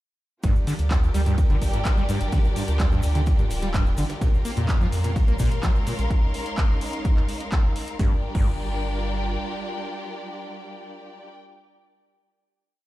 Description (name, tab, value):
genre	acid house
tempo	127 BPM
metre	4/4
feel	straight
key	G phrygian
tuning	A4 = 440 Hz
part	dark studio string section	sustained chords	0.4-11.3 s	G3 to Bb4	-34 LUFS	equal	sidechain pumping
part	overdriven acid bass	riff	0.4-8.5 s	G2 to Bb3	-28 LUFS	equal	tube saturation, lush chorus, sidechain pumping, ping-pong delay
part	warm sub bass	bass	0.4-9.4 s	D1 to F2	-25 LUFS	equal	sidechain pumping
part	booming analog drum machine	drums	0.4-8.5 s	crash cymbal, handclaps, hi-hat, snare drum	-35 LUFS	equal	none
part	breakbeat sampler-style drum kit	drums	0.4-6.0 s	hi-hat, ride cymbal, snare drum	-43 LUFS	right 2 dB	none
part	electronic kick drum	drums	0.4-8.5 s	none	-22 LUFS	equal	none
part	cabasa	percussion	0.4-6.1 s	none	-46 LUFS	left 5 dB	none
part	bright studio string section	texture	0.4-11.4 s	G4 to C6	-35 LUFS	left 1 dB	sidechain pumping
room	digital ambience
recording	played on a big sound system in a bare room, large studio reverb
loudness	-21 LUFS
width	side -16 dB against mid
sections	0.4-8.0 drop; 8.0-11.8 final chord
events	drop 0.4-8.0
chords	0.4 Gm7; 4.2 Bbm7; 8.0 Gm7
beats	| 0.43 0.91 1.38 1.85 | 2.33 2.80 3.27 3.74 | 4.21 4.69 5.16 5.63 | 6.11 6.58 7.05 7.52 | 7.99 8.47 8.94 9.41 | 9.88 10.36 10.83 11.30